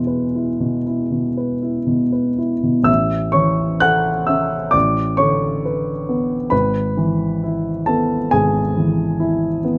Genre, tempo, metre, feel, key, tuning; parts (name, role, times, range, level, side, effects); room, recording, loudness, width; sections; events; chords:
classical, romantic character piece for solo piano; 58-70 BPM; 4/4; rubato; A major; A4 = 440 Hz
warm grand piano; solo; 0.0-9.8 s; G#1 to F#6; -19 LUFS; equal
light reverb; close, detailed microphones; -19 LUFS; mono
0.0-2.9 A section; 2.9-9.8 B section
0.0 E; 2.9 A; 4.7 Bm7/A; 6.5 E/G#